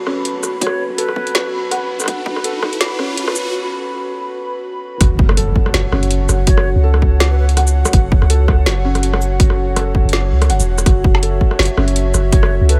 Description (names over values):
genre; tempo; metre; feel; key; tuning
half-time drum and bass; 164 BPM; 4/4; swing 56% on 16ths, half-time; F# minor; A4 = 441 Hz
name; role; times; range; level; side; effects
dark analog pad; sustained chords; 0.0-12.8 s; F#4 to B5; -26 LUFS; equal; chorus, sidechain pumping
felt-muted upright piano; arpeggios; 0.0-12.8 s; C#4 to F#5; -27 LUFS; equal; vintage 12-bit sampler grit, delay
riser and impact; sound effects; 1.2-6.5 s; none; -28 LUFS; equal; none
long sustained 808-style bass; bass; 0.1-12.8 s; E1 to C#2; -17 LUFS; equal; tube saturation, high-pass filter
drum and bass drum kit; drums; 0.1-12.8 s; hi-hat, rim click, shaker, snare drum; -22 LUFS; equal; high-pass filter on snare, high-pass filter on hats, high-pass filter on perc, high-pass filter on room
mellow hollow jazz flute; melody; 0.6-1.5, 6.5-7.5, 12.3-12.8 s; B4 to C#5; -30 LUFS; equal; delay
electronic kick drum; drums; 0.6-2.7, 5.0-12.4 s; none; -15 LUFS; equal; high-pass filter on kick
room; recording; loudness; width
little or no reverb; high-pass filter; -15 LUFS; mono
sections
0.0-5.0 A section; 5.0-12.8 B section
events
build-up 0.0-5.0; riser 1.2-3.5; break 3.5-5.0; drop 5.0-12.8; impact 5.0-6.5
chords
0.0 F#5